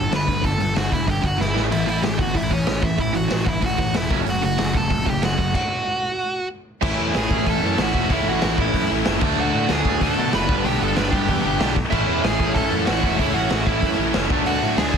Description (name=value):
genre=punk rock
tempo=188 BPM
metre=4/4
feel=straight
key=A mixolydian, A major from 6.8 s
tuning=A4 = 439 Hz
part: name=dark smooth lead guitar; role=melody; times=0.0-15.0 s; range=C#4 to B5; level=-25 LUFS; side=right 2 dB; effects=overdrive
part: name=crunchy overdriven guitar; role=riff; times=0.0-15.0 s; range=F#2 to D4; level=-26 LUFS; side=left 13 dB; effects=none
part: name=overdriven electric guitar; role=riff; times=0.0-15.0 s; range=G2 to E4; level=-26 LUFS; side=right 14 dB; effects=none
part: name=fuzz picked electric bass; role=bass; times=0.0-15.0 s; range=E1 to B2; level=-26 LUFS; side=equal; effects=overdrive
part: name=raw garage drum kit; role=drums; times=0.1-15.0 s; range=crash cymbal, hi-hat, kick drum, snare drum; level=-24 LUFS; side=equal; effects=none
part: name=tight distorted guitar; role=riff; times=6.8-15.0 s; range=G2 to E4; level=-27 LUFS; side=left 1 dB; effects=distortion
room=little or no reverb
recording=dense, heavily limited modern master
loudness=-18 LUFS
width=side -7 dB against mid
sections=0.0-6.8 A section; 6.8-15.0 B section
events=drum fill 1.4-1.7; stop 5.5-6.8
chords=0.0 G; 1.6 A; 9.2 D; 10.5 G; 11.9 A; 14.3 D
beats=0.12 | 0.43 0.75 1.07 1.39 | 1.71 2.03 2.35 2.67 | 2.99 3.31 3.63 3.95 | 4.27 4.59 4.91 5.23 | 5.55 5.87 6.19 6.51 | 6.83 7.15 7.47 7.79 | 8.11 8.42 8.74 9.06 | 9.38 9.70 10.02 10.34 | 10.65 10.97 11.29 11.61 | 11.93 12.24 12.56 12.88 | 13.20 13.51 13.83 14.15 | 14.46 14.78